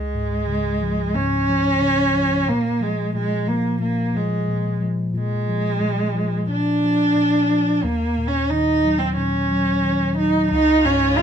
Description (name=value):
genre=acoustic folk-pop ballad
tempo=90 BPM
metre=4/4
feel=straight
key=unclear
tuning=A4 = 440 Hz
part: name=dark cello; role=melody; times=0.0-11.2 s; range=Ab3 to F4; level=-19 LUFS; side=right 1 dB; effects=plate reverb
part: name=mellow tine electric piano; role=accompaniment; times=0.0-11.2 s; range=Db2 to Gb3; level=-23 LUFS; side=left 2 dB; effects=none
part: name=warm symphonic string section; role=sustained chords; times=10.5-11.2 s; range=Db3 to F4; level=-27 LUFS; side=left 3 dB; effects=none
room=moderate small room reverb, RT60 0.5 s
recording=close, detailed microphones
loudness=-18 LUFS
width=side -8 dB against mid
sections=0.0-10.5 A section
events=none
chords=0.0 Db; 2.5 Bb5; 7.8 Ebm7; 10.5 Db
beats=0.48 1.15 1.81 | 2.48 3.15 3.81 4.48 | 5.15 5.82 6.49 7.16 | 7.83 8.50 9.17 9.84 | 10.52 11.19